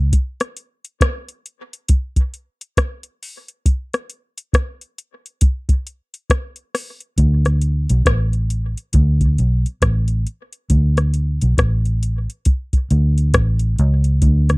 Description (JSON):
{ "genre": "dub reggae", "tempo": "68 BPM", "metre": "4/4", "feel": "swing 62% on 16ths", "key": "unclear", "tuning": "A4 = 440 Hz", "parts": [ { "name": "vintage muted fingered electric bass", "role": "bass", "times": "0.0-0.1, 7.2-14.6 s", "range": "A1 to D2", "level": "-15 LUFS", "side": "equal", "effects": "none" }, { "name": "soft vintage rhythm box", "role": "drums", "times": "0.1-14.6 s", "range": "hi-hat, kick drum, rim click", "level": "-16 LUFS", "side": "equal", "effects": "overdrive" } ], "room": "little or no reverb", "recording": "dry, close 1970s-style studio recording", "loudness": "-16 LUFS", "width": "side -27 dB against mid", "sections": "0.0-7.2 A section; 7.2-14.6 B section", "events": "break 0.1-7.2", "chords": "none" }